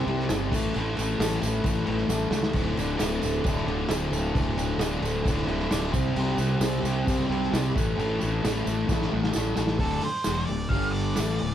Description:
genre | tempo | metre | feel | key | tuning
garage rock duo or trio | 132 BPM | 4/4 | straight | unclear | A4 = 439 Hz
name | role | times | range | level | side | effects
fuzz guitar | riff | 0.0-11.5 s | D2 to C4 | -27 LUFS | left 1 dB | distortion
fuzz fingered electric bass | bass | 0.0-11.5 s | D1 to C#2 | -30 LUFS | equal | overdrive
vintage drum kit | drums | 0.1-11.5 s | crash cymbal, hi-hat, kick drum, snare drum | -29 LUFS | equal | none
tambourine | percussion | 0.3-11.3 s | none | -41 LUFS | right 6 dB | none
octave-fuzz lead guitar | melody | 9.8-11.5 s | A4 to F5 | -31 LUFS | right 2 dB | distortion
room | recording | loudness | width
moderate studio ambience, RT60 0.5 s | band playing live in one room | -24 LUFS | side -10 dB against mid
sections
0.0-9.8 A section; 9.8-11.5 B section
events
drum fill 2.1-2.5, 8.9-9.8; lead electric guitar solo 9.8-11.5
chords
0.0 C5; 0.5 A5; 2.5 D5; 5.9 C5; 7.8 A5; 9.8 D5; 10.7 G5

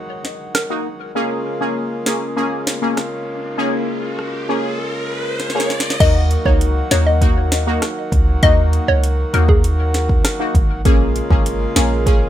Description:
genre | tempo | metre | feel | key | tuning
dancehall | 99 BPM | 4/4 | straight | Eb minor | A4 = 439 Hz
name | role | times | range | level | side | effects
hand-pumped harmonium | sustained chords | 0.0-12.3 s | Db3 to Gb4 | -25 LUFS | equal | none
downlifter and riser | sound effects | 0.0-6.0 s | none | -29 LUFS | equal | none
afro-pop drum kit | drums | 0.2-12.2 s | crash cymbal, hi-hat, kick drum, rim click, snare drum | -16 LUFS | equal | none
hollow square pluck | melody | 0.5-1.0, 6.0-10.7 s | Ab4 to Eb5 | -21 LUFS | left 2 dB | chorus, ping-pong delay
synth brass stab | accompaniment | 0.7-12.3 s | Bb3 to Ab4 | -21 LUFS | left 1 dB | chorus, phaser
warm 808-style bass | bass | 6.0-12.3 s | Ab1 to Eb2 | -17 LUFS | equal | none
room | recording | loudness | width
light reverb | none | -15 LUFS | side -12 dB against mid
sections
0.0-6.0 A section; 6.0-12.3 B section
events
riser 2.2-6.0; drum fill 5.4-6.0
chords
0.0 Ebm; 1.2 Bbm7; 6.0 Ebm; 10.9 Bbm7

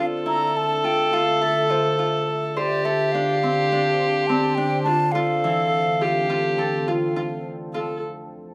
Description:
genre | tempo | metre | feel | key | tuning
contemporary instrumental, chamber music in an uneven meter | 208 BPM (eighths) | 9/8 | straight | F major | A4 = 440 Hz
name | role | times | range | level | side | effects
mellow hollow wooden flute | melody | 0.0-7.2 s | C5 to Bb5 | -26 LUFS | equal | none
dark viola | second line | 0.0-8.0 s | F4 to A4 | -26 LUFS | equal | none
deep dark ambient pad | sustained chords | 0.0-8.0 s | D3 to E5 | -32 LUFS | equal | chorus, built-in reverb
Celtic harp | arpeggios | 0.0-8.0 s | E3 to C5 | -30 LUFS | equal | none
room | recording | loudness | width
light reverb | close, detailed microphones | -22 LUFS | mono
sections
0.0-7.7 A section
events
none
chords
0.0 Fmaj7; 2.6 Dm7; 5.2 Fmaj7

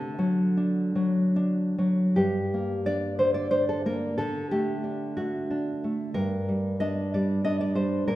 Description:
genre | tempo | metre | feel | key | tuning
romantic piece for solo classical guitar | 61 BPM (dotted quarters) | 6/8 | uneven beats, rubato | G minor | A4 = 439 Hz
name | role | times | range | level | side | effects
nylon-string guitar | solo | 0.0-8.2 s | G2 to Eb5 | -24 LUFS | equal | none
room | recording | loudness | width
wet recital hall reverb, RT60 1.4 s | recorded in a church or concert hall | -24 LUFS | side -15 dB against mid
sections
0.0-2.2 A section; 2.2-8.2 B section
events
none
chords
0.0 D; 2.2 Gm; 4.2 D; 6.2 Gm

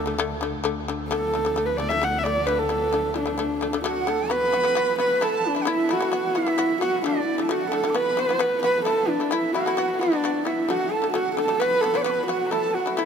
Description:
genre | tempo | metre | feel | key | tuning
mongolian traditional, Mongolian folk | 132 BPM | 4/4 | straight | D gong mode | A4 = 440 Hz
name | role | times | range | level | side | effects
warm horsehead fiddle | melody | 0.0-13.1 s | D4 to F#5 | -22 LUFS | right 1 dB | none
shamisen | arpeggios | 0.0-13.1 s | D3 to F#4 | -28 LUFS | left 6 dB | none
warm double bass | drone | 0.0-4.4 s | D2 | -33 LUFS | equal | none
bright dizi | second line | 3.9-13.1 s | D5 to D6 | -30 LUFS | right 6 dB | none
room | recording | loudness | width
moderate huge ambient reverb, RT60 5.0 s | none | -21 LUFS | side -7 dB against mid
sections
0.0-4.3 A section; 4.3-13.1 B section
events
none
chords
0.0 D5; 4.3 B5; 5.2 A5; 6.1 B5; 7.0 D5; 8.0 B5; 8.9 A5; 9.8 B5; 10.7 D5; 11.6 B5; 12.5 A5

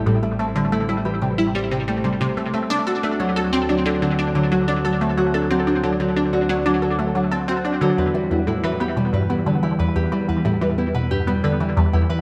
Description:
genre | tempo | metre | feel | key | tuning
ambient, sequencer-driven space music | 91 BPM | 4/4 | straight | unclear | A4 = 440 Hz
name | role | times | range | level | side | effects
Celtic harp | arpeggios | 0.0-12.2 s | F#3 to B4 | -25 LUFS | equal | tape echo
fat analog bass | bass | 0.0-12.2 s | A1 to D2 | -30 LUFS | equal | tube saturation
resonant blip pluck | riff | 0.1-12.2 s | E2 to A4 | -23 LUFS | equal | phaser, ensemble chorus, tape echo
room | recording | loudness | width
moderate concert hall reverb, RT60 2.0 s | none | -21 LUFS | mono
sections
0.0-12.2 A section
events
none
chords
0.0 Am7; 2.7 D7; 8.0 Em

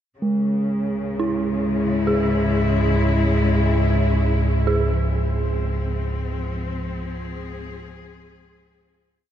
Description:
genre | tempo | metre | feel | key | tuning
dark ambient drone | 51 BPM | 4/4 | straight | unclear | A4 = 439 Hz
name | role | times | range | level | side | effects
rich chamber cello section | sustained chords | 0.2-9.3 s | C#3 to Ab4 | -25 LUFS | left 2 dB | shimmer reverb
deep rumbling drone | drone | 1.5-9.3 s | C#2 to G#2 | -22 LUFS | right 1 dB | built-in reverb
quartz singing bowl | texture | 0.2-9.3 s | G#3 | -25 LUFS | equal | shimmer reverb
dark detuned synth bell | arpeggios | 1.2-9.3 s | E4 to G#4 | -27 LUFS | right 2 dB | chorus, tape echo, shimmer reverb
room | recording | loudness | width
moderate huge ambient reverb, RT60 8.8 s | none | -19 LUFS | side -10 dB against mid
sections
0.2-9.3 A section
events
fade-out on cello section 0.2-9.3; fade-out on singing bowl 0.2-9.3; fade-out 4.9-9.3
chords
0.2 C#m; 4.9 Fm

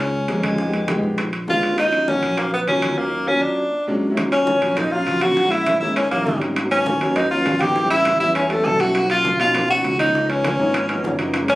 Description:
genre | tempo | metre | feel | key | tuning
Afro-Cuban jazz | 201 BPM | 4/4 | straight | Eb minor | A4 = 441 Hz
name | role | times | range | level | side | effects
clear tenor saxophone | melody | 0.0-11.6 s | Ab3 to A4 | -19 LUFS | equal | none
clear upright piano | accompaniment | 0.0-11.6 s | Bb2 to Ab4 | -24 LUFS | equal | none
fingered electric bass | bass | 0.0-11.6 s | Gb1 to B2 | -26 LUFS | equal | none
congas | percussion | 0.1-11.6 s | none | -32 LUFS | equal | none
bongos | percussion | 0.3-11.6 s | none | -32 LUFS | left 3 dB | none
timbales | percussion | 0.3-11.6 s | none | -28 LUFS | right 3 dB | none
breathy mellow silver concert flute | second line | 4.3-11.6 s | A4 to A5 | -27 LUFS | left 2 dB | none
room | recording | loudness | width
light reverb | recorded on a phone in the room, club reverb, compression | -17 LUFS | side -18 dB against mid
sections
0.0-4.2 A section; 4.2-11.6 B section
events
none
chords
0.0 Gbmaj7 (rootless); 0.6 Fm7b5; 1.2 Bb7b9; 1.8 Ebm7; 3.6 Bb7alt; 4.2 Ebm9; 5.4 Bbm7b5; 6.0 Eb7b9; 6.6 Abm9; 7.8 A9; 9.0 Bmaj9#11; 10.1 Db13

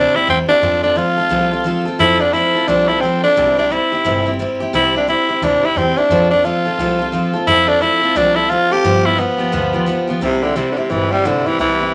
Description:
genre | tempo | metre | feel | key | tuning
rockabilly | 175 BPM | 4/4 | swing 61% on 8ths | C major | A4 = 439 Hz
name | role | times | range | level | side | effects
raspy tenor saxophone | melody | 0.0-11.9 s | C3 to G4 | -17 LUFS | equal | none
picked steel-string acoustic guitar | accompaniment | 0.0-11.9 s | G2 to A4 | -21 LUFS | equal | none
upright bass | bass | 0.0-11.9 s | G1 to G2 | -28 LUFS | equal | none
room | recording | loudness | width
moderate large studio reverb, RT60 0.8 s | vinyl crackle | -16 LUFS | mono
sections
0.0-10.2 A section; 10.2-11.9 B section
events
none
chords
0.0 C; 0.6 F; 3.4 C; 6.1 F; 8.8 G7; 10.2 C

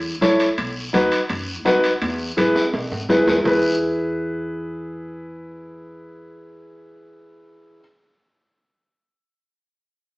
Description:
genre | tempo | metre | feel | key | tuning
latin, cumbia | 167 BPM | 4/4 | straight | E major | A4 = 440 Hz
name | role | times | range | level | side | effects
upright bass | bass | 0.0-7.8 s | A1 to G#2 | -31 LUFS | equal | none
warm upright piano | accompaniment | 0.2-7.8 s | D#4 to C#5 | -20 LUFS | equal | none
congas | percussion | 0.2-3.5 s | none | -27 LUFS | equal | none
guiro | percussion | 0.2-3.5 s | none | -31 LUFS | left 1 dB | none
timbales | percussion | 0.2-3.5 s | none | -27 LUFS | right 1 dB | none
room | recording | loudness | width
wet large studio reverb, RT60 1.0 s | band playing live in one room, AM radio sound | -18 LUFS | side -22 dB against mid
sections
0.0-3.5 A section; 3.5-6.3 B section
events
drum fill 2.6-3.5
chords
0.0 A; 0.6 B; 2.0 E

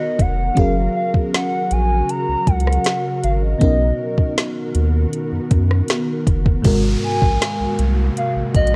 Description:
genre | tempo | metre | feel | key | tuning
contemporary R&B | 79 BPM | 4/4 | straight | unclear | A4 = 435 Hz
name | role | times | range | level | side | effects
hollow clarinet-like synth lead | melody | 0.0-8.8 s | Eb5 to Bb5 | -25 LUFS | equal | chorus
FM electric piano with soft pad layer | accompaniment | 0.0-8.8 s | Ab2 to Db5 | -26 LUFS | equal | chorus, tremolo
ethereal airy pad | sustained chords | 0.0-8.8 s | C3 to Bb4 | -28 LUFS | equal | ensemble chorus, built-in reverb
glassy synth bell | texture | 0.0-0.9, 7.4-8.8 s | Gb4 to Gb5 | -40 LUFS | equal | chorus, phaser, tape echo
round analog bass | bass | 0.2-8.8 s | F1 to Gb2 | -21 LUFS | equal | none
smooth R&B drum kit | drums | 0.2-8.8 s | crash cymbal, hi-hat, kick drum, rim click, snare drum | -20 LUFS | equal | none
downlifter | sound effects | 6.6-8.8 s | none | -35 LUFS | equal | none
room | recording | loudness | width
digital ambience | worn, warbling old tape, cassette tape, warbly pitch drift | -18 LUFS | mono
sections
0.0-6.6 A section; 6.6-8.8 B section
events
none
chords
0.0 Cbmaj7; 0.6 Gb; 3.6 Cbmaj7; 6.6 Ab9

